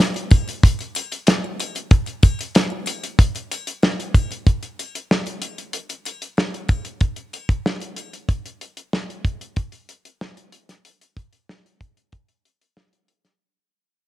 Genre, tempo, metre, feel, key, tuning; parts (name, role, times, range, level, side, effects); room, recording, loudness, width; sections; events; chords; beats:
soul; 94 BPM; 4/4; straight
damped 70s drum kit; drums; 0.0-13.4 s; hi-hat, kick drum, snare drum; -17 LUFS; equal
triangle; percussion; 0.0-8.3 s; -34 LUFS; left 5 dB
light reverb; dark, warm production; -19 LUFS; side -15 dB against mid
0.0-3.2 A section; 3.2-13.4 B section
fade-out 3.2-13.4
| 0.62 1.26 1.90 2.54 | 3.18 3.82 4.46 5.09 | 5.73 6.37 7.01 7.65 | 8.29 8.93 9.56 10.20 | 10.84 11.48 12.12 12.76